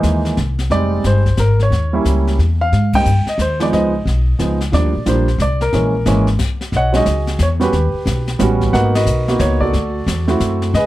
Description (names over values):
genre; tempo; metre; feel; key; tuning
jazz piano trio; 180 BPM; 3/4; swing 64% on 8ths; Eb major, B major from 6.7 s; A4 = 440 Hz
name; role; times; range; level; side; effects
warm baby grand piano; melody; 0.0-10.9 s; E3 to G5; -17 LUFS; right 1 dB; none
upright bass; bass; 0.0-10.9 s; F1 to Ab2; -16 LUFS; equal; none
jazz brush drum kit; drums; 0.0-10.9 s; brushed snare drum, crash cymbal, hi-hat, kick drum, ride cymbal, snare drum; -25 LUFS; left 2 dB; none
room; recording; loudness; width
light reverb; dark, warm production; -13 LUFS; side -16 dB against mid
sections
0.0-6.7 A section; 6.7-10.9 B section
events
band accent 2.9, 8.9; stop 6.4-6.7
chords
0.0 C7alt; 0.7 Fm9; 1.7 Eb7b9; 2.7 Abmaj7; 3.7 Db9; 4.7 Ebmaj7 (rootless); 5.7 Bbm7b5; 6.7 B69; 7.7 D#7alt; 8.7 G#m9; 9.7 D9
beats
0.04 0.37 | 0.71 1.04 1.38 | 1.71 2.05 2.38 | 2.72 3.05 3.39 | 3.72 4.06 4.39 | 4.72 5.06 5.39 | 5.73 6.06 6.39 | 6.73 7.06 7.40 | 7.73 8.06 8.40 | 8.73 9.06 9.40 | 9.73 10.07 10.40 | 10.73